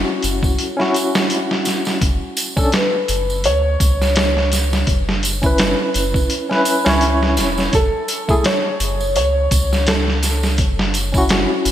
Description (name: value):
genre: trip hop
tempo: 84 BPM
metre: 4/4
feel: swing 56% on 16ths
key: unclear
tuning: A4 = 441 Hz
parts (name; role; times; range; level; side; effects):
- barky tine electric piano; accompaniment; 0.0-11.7 s; A3 to C#5; -20 LUFS; left 1 dB; tremolo, tape echo
- soft dub sub bass; bass; 0.0-11.7 s; E1 to D2; -20 LUFS; equal; none
- trip hop sampler-style drum kit; drums; 0.2-11.7 s; hi-hat, kick drum, snare drum; -19 LUFS; equal; vintage 12-bit sampler grit, gated reverb
- tambourine; percussion; 0.2-11.7 s; none; -28 LUFS; right 2 dB; none
- felt-muted upright piano; melody; 2.8-10.4 s; A4 to C#5; -22 LUFS; equal; vintage 12-bit sampler grit, dub echo
room: moderate lush hall reverb, RT60 3.0 s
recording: bright 1980s-style digital production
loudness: -15 LUFS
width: side -11 dB against mid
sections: 0.0-11.7 A section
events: none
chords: 0.0 C#madd11/F#; 2.0 Bmadd9/F#; 4.9 C#m7/F#; 7.7 F#m; 10.6 C#madd11/F#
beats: 0.59 1.31 | 2.02 2.73 3.45 4.16 | 4.88 5.59 6.31 7.02 | 7.74 8.45 9.16 9.88 | 10.59 11.31